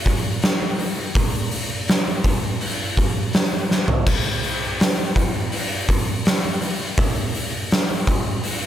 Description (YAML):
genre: metal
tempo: 82 BPM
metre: 4/4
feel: straight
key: none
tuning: none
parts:
  - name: oversized low-tuned drum kit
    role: drums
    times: 0.1-8.6 s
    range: crash cymbal, hi-hat, kick drum, snare drum, toms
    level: -19 LUFS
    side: equal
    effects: none
room: little or no reverb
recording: none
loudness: -19 LUFS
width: side -11 dB against mid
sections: 0.0-8.7 A section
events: drum fill 3.7-4.1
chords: none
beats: 0.42 | 1.15 1.88 2.61 3.34 | 4.07 4.79 5.52 6.25 | 6.98 7.71 8.44